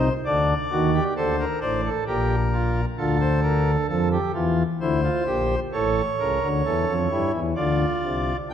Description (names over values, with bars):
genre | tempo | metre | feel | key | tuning
classical, baroque-style 3-part fugue for pipe organ | 65 BPM | 3/4 | straight | unclear | A4 = 441 Hz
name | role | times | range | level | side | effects
pipe organ, cornet | solo | 0.0-8.5 s | A1 to G5 | -20 LUFS | equal | none
room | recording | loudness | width
wet scoring stage reverb, RT60 2.0 s | none | -20 LUFS | side -9 dB against mid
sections
0.0-8.5 A section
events
none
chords
0.3 D7; 2.1 Gm/Bb; 3.0 Dm; 4.8 Em7b5/D; 5.7 A7; 7.6 Dm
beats
| 0.26 1.17 2.07 | 2.98 3.89 4.81 | 5.73 6.65 7.57 | 8.50